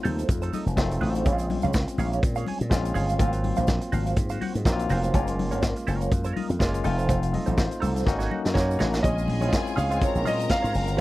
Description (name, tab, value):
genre	disco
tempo	123 BPM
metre	4/4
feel	swing 56% on 16ths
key	Bb minor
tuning	A4 = 441 Hz
part	barky tine electric piano	accompaniment	0.0-11.0 s	Gb3 to Eb5	-30 LUFS	left 2 dB	overdrive, medium stereo tremolo
part	direct-recorded clean electric guitar	accompaniment	0.0-11.0 s	Eb4 to Ab5	-32 LUFS	right 5 dB	wah
part	vintage drum kit	drums	0.0-11.0 s	hi-hat, kick drum, snare drum	-26 LUFS	equal	none
part	slap bass with an envelope filter	bass	0.1-11.0 s	F1 to Bb2	-26 LUFS	equal	none
part	congas	percussion	0.1-10.4 s	none	-33 LUFS	left 4 dB	none
part	tube shaker	percussion	0.1-11.0 s	none	-47 LUFS	right 16 dB	none
part	warm concert grand piano	melody	8.5-11.0 s	Db5 to F5	-28 LUFS	equal	none
part	rich symphonic string section	second line	9.0-11.0 s	Ab4 to Bb5	-34 LUFS	left 1 dB	none
room	little or no reverb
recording	dry, close 1970s-style studio recording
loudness	-22 LUFS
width	side -17 dB against mid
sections	0.0-9.0 A section; 9.0-11.0 B section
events	drum fill 8.1-9.0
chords	0.0 F7; 1.3 Bbm7; 3.2 Ab13; 5.1 Gbmaj7; 6.8 F7; 8.1 Ab7sus4; 9.0 Bbm7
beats	0.28 0.77 | 1.25 1.74 2.23 2.71 | 3.20 3.68 4.17 4.66 | 5.14 5.63 6.12 6.60 | 7.09 7.58 8.06 8.55 | 9.04 9.53 10.01 10.50 | 10.99